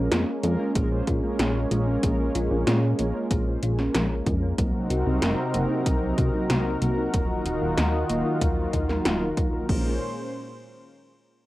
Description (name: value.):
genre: synthwave.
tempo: 94 BPM.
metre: 4/4.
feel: straight.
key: Bb minor.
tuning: A4 = 440 Hz.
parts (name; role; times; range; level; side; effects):
lush unison pad; sustained chords; 0.0-10.0 s; Bb2 to C5; -28 LUFS; equal; chorus, sidechain pumping, cassette tape.
thumb-piano-like synth pluck; arpeggios; 0.0-10.0 s; Ab3 to Bb4; -32 LUFS; left 2 dB; chorus, cassette tape, analog delay.
mellow synth brass; stabs; 0.0-9.9 s; Gb3 to C5; -32 LUFS; right 1 dB; chorus, cassette tape, analog delay.
chorused synth bass; bass; 0.0-10.0 s; Eb1 to Bb2; -26 LUFS; equal; sidechain pumping.
80s electronic pad drums; drums; 0.1-9.8 s; crash cymbal, hi-hat, snare drum; -28 LUFS; equal; cassette tape.
electronic kick drum; drums; 0.8-9.8 s; none; -26 LUFS; equal; cassette tape.
room: light reverb.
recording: home recording on cassette.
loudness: -22 LUFS.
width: side -17 dB against mid.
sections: 0.0-9.7 A section; 9.7-11.5 B section.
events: filter sweep on analog synth bass 0.0-9.7; filter sweep on analog polysynth 0.0-9.7.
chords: 0.0 Bbm7; 4.6 Cm7b5; 7.1 Ebmadd9; 9.7 Bbm7.